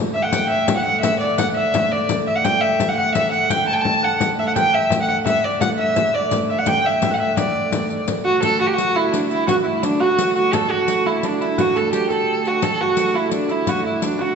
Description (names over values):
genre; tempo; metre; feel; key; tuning
medieval dance; 114 BPM (dotted quarters); 6/8; straight; D major; A4 = 440 Hz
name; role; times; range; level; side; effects
Celtic harp; second line; 0.0-14.3 s; D4 to A5; -23 LUFS; right 4 dB; none
clear hurdy-gurdy; drone; 0.0-14.3 s; D3 to A3; -27 LUFS; right 1 dB; none
dark violin; melody; 0.1-14.3 s; D4 to A5; -19 LUFS; equal; none
frame drum; percussion; 0.3-14.3 s; none; -25 LUFS; left 4 dB; none
riq; percussion; 0.3-14.2 s; none; -29 LUFS; left 5 dB; none
room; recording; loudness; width
wet recital hall reverb, RT60 1.7 s; nothing above 7.9 kHz; -16 LUFS; side -6 dB against mid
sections
0.0-8.4 A section; 8.4-14.3 B section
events
none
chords
none